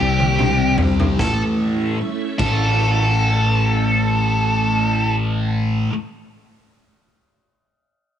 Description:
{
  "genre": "psychedelic rock",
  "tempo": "75 BPM",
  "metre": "4/4",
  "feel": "straight",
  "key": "A mixolydian",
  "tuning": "A4 = 439 Hz",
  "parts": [
    { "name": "octave-fuzz lead guitar", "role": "melody", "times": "0.0-5.2 s", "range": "G4 to A4", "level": "-21 LUFS", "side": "equal", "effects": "distortion, analog delay" },
    { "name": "phased string machine", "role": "sustained chords", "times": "0.0-5.2 s", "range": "G3 to E5", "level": "-29 LUFS", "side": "right 4 dB", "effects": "ensemble chorus, phaser" },
    { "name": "thick fuzz guitar", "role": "riff", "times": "0.0-5.9 s", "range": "A2 to C4", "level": "-20 LUFS", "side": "left 1 dB", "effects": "distortion, phaser" },
    { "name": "picked electric bass", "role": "bass", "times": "0.0-5.9 s", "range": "A1 to C2", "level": "-22 LUFS", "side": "equal", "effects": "none" },
    { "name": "raw garage drum kit", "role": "drums", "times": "0.2-2.6 s", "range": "crash cymbal, kick drum, snare drum, toms", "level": "-24 LUFS", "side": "left 1 dB", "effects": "none" }
  ],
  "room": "light reverb, studio reverb",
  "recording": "none",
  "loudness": "-16 LUFS",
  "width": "side -10 dB against mid",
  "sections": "0.0-1.2 A section; 1.2-4.4 B section",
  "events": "drum fill 0.0-1.2",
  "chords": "0.0 C; 1.2 A"
}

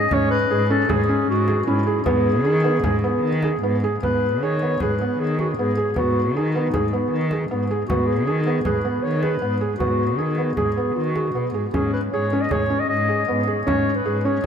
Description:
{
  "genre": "contemporary instrumental, chamber music in an uneven meter",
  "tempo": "155 BPM",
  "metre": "5/4",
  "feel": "straight",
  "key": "G# minor",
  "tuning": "A4 = 440 Hz",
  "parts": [
    { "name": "mellow clarinet", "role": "melody", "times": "0.0-14.5 s", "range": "D#4 to D#5", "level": "-24 LUFS", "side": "left 1 dB", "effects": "none" },
    { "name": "felt-muted upright piano", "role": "arpeggios", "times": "0.0-14.4 s", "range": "B3 to G#4", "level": "-23 LUFS", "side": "right 1 dB", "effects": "none" },
    { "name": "dark cello", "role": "bass", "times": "0.0-14.4 s", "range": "G#2 to D#3", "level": "-24 LUFS", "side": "equal", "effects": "none" },
    { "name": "frame drum", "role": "percussion", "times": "0.1-14.5 s", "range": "none", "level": "-31 LUFS", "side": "left 1 dB", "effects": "none" }
  ],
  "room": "wet cathedral reverb, RT60 5.9 s",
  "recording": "in a vast, echoing space",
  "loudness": "-19 LUFS",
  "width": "side -7 dB against mid",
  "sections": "0.0-4.0 A section; 4.0-14.5 B section",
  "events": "none",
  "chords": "0.0 C#5/G#; 2.1 G#m; 11.7 C#sus2/G#"
}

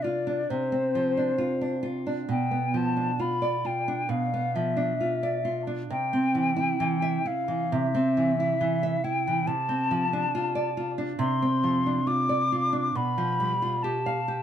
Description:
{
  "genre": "romantic duo for flute and classical guitar",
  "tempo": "67 BPM",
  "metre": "4/4",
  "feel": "rubato",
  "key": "C major",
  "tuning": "A4 = 442 Hz",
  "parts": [
    { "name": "hollow concert flute", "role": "melody", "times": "0.0-14.4 s", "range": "C5 to D6", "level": "-27 LUFS", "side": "left 2 dB", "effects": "plate reverb" },
    { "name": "nylon-string guitar", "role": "accompaniment", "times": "0.0-14.4 s", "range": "B2 to F5", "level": "-27 LUFS", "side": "right 2 dB", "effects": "none" }
  ],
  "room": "light reverb",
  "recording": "none",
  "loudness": "-24 LUFS",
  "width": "side -9 dB against mid",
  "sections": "0.0-14.4 A section",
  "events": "none",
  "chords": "0.0 Dm7/C; 2.3 G13/B; 5.9 C; 9.5 Dm7/C; 13.0 G7/B"
}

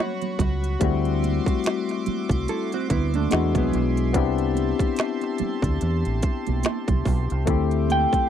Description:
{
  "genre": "R&B, neo-soul",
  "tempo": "72 BPM",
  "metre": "4/4",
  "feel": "swing 58% on 16ths",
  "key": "A dorian",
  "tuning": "A4 = 440 Hz",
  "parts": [
    { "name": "electric guitar through a small old amp", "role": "melody", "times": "0.0-0.4, 7.9-8.3 s", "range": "C#5 to G5", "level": "-25 LUFS", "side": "right 2 dB", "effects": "none" },
    { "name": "barky tine electric piano", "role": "accompaniment", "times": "0.0-8.3 s", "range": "F#3 to A4", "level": "-26 LUFS", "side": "left 11 dB", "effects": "overdrive, auto-pan" },
    { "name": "chorused pulse-width pad", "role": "sustained chords", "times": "0.0-8.3 s", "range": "F#4 to D6", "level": "-33 LUFS", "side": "right 2 dB", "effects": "none" },
    { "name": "organic electronic drum kit", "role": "drums", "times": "0.0-8.3 s", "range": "finger snaps, hi-hat, kick drum, snare drum", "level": "-24 LUFS", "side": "right 1 dB", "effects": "overdrive" },
    { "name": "congas", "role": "percussion", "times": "0.2-8.1 s", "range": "none", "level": "-32 LUFS", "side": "right 26 dB", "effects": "none" },
    { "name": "deep dub fingered electric bass", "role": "bass", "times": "0.4-8.2 s", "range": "A1 to E2", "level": "-24 LUFS", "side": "right 1 dB", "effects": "none" },
    { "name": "hollow-body jazz guitar", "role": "second line", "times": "2.5-4.1 s", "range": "F#3 to A4", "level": "-27 LUFS", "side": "right 8 dB", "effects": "none" }
  ],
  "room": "little or no reverb",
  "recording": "dry, close 1970s-style studio recording",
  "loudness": "-21 LUFS",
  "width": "side -9 dB against mid",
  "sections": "0.0-8.3 A section",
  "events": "none",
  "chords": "0.0 A13 (rootless); 0.8 D9sus4; 3.3 E7b13; 4.1 Am7/C; 7.5 D9sus4"
}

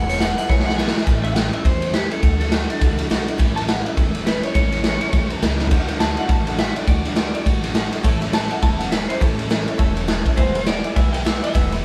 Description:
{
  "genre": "rockabilly",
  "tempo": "206 BPM",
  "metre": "4/4",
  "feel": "swing 59% on 8ths",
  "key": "A major",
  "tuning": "A4 = 439 Hz",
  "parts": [
    { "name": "electric guitar through a small old amp", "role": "melody", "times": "0.0-11.7 s", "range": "G4 to A5", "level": "-28 LUFS", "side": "equal", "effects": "none" },
    { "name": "picked steel-string acoustic guitar", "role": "accompaniment", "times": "0.0-11.8 s", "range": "E2 to F#4", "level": "-32 LUFS", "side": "equal", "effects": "none" },
    { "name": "upright bass", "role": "bass", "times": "0.0-11.8 s", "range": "E1 to E2", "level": "-28 LUFS", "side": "equal", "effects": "none" },
    { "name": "honky-tonk upright piano", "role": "accompaniment", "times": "0.1-1.0, 8.0-11.8 s", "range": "B4 to B5", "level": "-35 LUFS", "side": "equal", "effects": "none" },
    { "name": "raw garage drum kit", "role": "drums", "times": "0.1-11.8 s", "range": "crash cymbal, hi-hat, kick drum, ride cymbal, snare drum, toms", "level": "-21 LUFS", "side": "equal", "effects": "none" }
  ],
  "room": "light reverb",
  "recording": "band playing live in one room",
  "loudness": "-19 LUFS",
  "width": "mono",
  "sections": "0.0-1.1 A section; 1.1-11.8 A section",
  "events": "drum fill 0.5-1.1, 5.6; honky-tonk piano fill 9.8-10.4",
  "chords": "0.0 E; 1.1 A; 2.2 D; 3.4 A; 5.7 D; 8.0 A; 10.4 E"
}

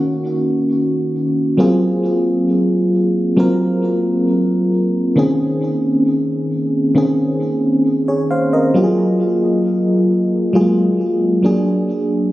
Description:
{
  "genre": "R&B",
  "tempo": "67 BPM",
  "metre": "4/4",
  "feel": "straight",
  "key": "Bb minor",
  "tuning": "A4 = 440 Hz",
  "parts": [
    { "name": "FM electric piano with tremolo", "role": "solo", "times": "0.0-12.3 s", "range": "Eb3 to F5", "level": "-14 LUFS", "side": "equal", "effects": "digital delay" }
  ],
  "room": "moderate lush hall reverb, RT60 2.4 s",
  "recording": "recorded on a phone in the room, studio reverb, compression",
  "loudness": "-14 LUFS",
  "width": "side -16 dB against mid",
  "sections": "0.0-12.3 A section",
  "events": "none",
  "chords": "0.0 Ebm7; 1.6 Ab13; 5.2 Bbm11; 8.8 Gbmaj9; 11.4 Bbaug7"
}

